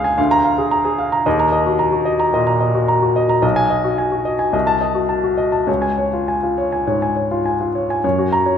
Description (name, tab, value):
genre	classical, virtuoso piano study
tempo	99-113 BPM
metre	4/4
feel	rubato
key	unclear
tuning	A4 = 440 Hz
part	warm baby grand piano	solo	0.0-8.6 s	B1 to A#5	-15 LUFS	left 1 dB	none
room	wet recital hall reverb, RT60 1.6 s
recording	none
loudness	-15 LUFS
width	side -8 dB against mid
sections	0.0-8.0 A section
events	none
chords	0.2 A#7/D; 1.3 D#m; 3.4 G#m7/B; 4.5 Cdim7; 5.7 C#; 8.0 F#